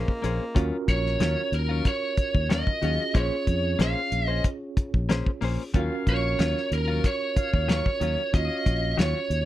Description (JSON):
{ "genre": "straight-eighth soul blues", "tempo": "93 BPM", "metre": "4/4", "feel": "straight", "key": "unclear", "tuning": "A4 = 440 Hz", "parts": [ { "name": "growling tenor saxophone", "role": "second line", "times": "0.0-0.7 s", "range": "Bb3", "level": "-33 LUFS", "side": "equal", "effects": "none" }, { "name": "mellow tine electric piano", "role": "accompaniment", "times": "0.0-9.5 s", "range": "Db4 to Eb5", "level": "-33 LUFS", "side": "right 3 dB", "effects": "medium stereo tremolo" }, { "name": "direct-recorded clean electric guitar", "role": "stabs", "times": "0.0-9.2 s", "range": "Eb3 to C5", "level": "-31 LUFS", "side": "left 7 dB", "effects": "tremolo" }, { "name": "fingered electric bass", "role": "bass", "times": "0.0-9.5 s", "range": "Bb1 to F2", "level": "-27 LUFS", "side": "equal", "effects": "none" }, { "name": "cloth-damped thuddy drum kit", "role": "drums", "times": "0.1-9.5 s", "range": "hi-hat, kick drum, snare drum", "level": "-24 LUFS", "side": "equal", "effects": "none" }, { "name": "lead guitar through a small cranked amp", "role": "melody", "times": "0.9-9.5 s", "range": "Bb4 to F5", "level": "-28 LUFS", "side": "right 2 dB", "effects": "overdrive" }, { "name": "dark horn section", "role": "sustained chords", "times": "5.7-9.0 s", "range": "F4 to F5", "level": "-38 LUFS", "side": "left 3 dB", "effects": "none" } ], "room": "little or no reverb", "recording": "dry, close 1970s-style studio recording", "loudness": "-23 LUFS", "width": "side -14 dB against mid", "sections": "0.0-9.5 A section", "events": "none", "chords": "0.0 Bbm9; 0.6 Ebm9; 3.1 Bbm9; 5.7 Ebm9" }